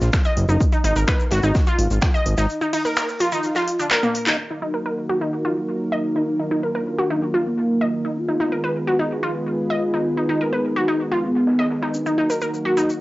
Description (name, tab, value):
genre	melodic techno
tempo	127 BPM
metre	4/4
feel	straight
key	Eb minor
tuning	A4 = 440 Hz
part	fat analog bass	bass	0.0-2.5 s	Gb1 to Bb1	-19 LUFS	equal	sidechain pumping
part	big rock drum kit	drums	0.0-13.0 s	hi-hat, shaker, snare drum	-39 LUFS	equal	none
part	cabasa	percussion	0.0-4.4, 11.9-13.0 s	none	-37 LUFS	left 2 dB	none
part	electronic kick drum	drums	0.1-2.1 s	none	-19 LUFS	equal	overdrive, cassette tape
part	house drum kit	drums	0.1-4.4 s	finger snaps, handclaps, hi-hat	-23 LUFS	equal	overdrive, sidechain pumping on hats, cassette tape
part	wide unison pluck	arpeggios	0.3-12.9 s	Bb3 to Eb5	-22 LUFS	equal	sidechain pumping, cassette tape, analog delay
part	expressive portamento lead	melody	4.4-13.0 s	Bb3 to F4	-24 LUFS	equal	analog chorus, sidechain pumping, analog delay
part	warm analog pad	sustained chords	4.4-13.0 s	Eb3 to Cb5	-27 LUFS	equal	chorus, sidechain pumping, cassette tape
room	wet small room reverb, RT60 0.5 s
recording	home recording on cassette, nothing above 7.6 kHz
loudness	-18 LUFS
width	side -18 dB against mid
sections	0.0-4.4 A section; 4.4-13.0 B section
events	break 2.5-4.4; drum fill 3.9-4.4; band accent 4.3; filter sweep on synth pluck 4.4-13.0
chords	0.0 Ebm; 0.6 Ab5; 2.5 Bbsus4; 4.4 Ebm; 8.2 Abm; 11.9 Ebm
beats	0.13 | 0.60 1.08 1.55 2.02 | 2.50 2.97 3.44 3.91 | 4.38 4.86 5.33 5.80 | 6.28 6.75 7.22 7.69 | 8.16 8.64 9.11 9.58 | 10.05 10.53 11.00 11.47 | 11.94 12.42 12.89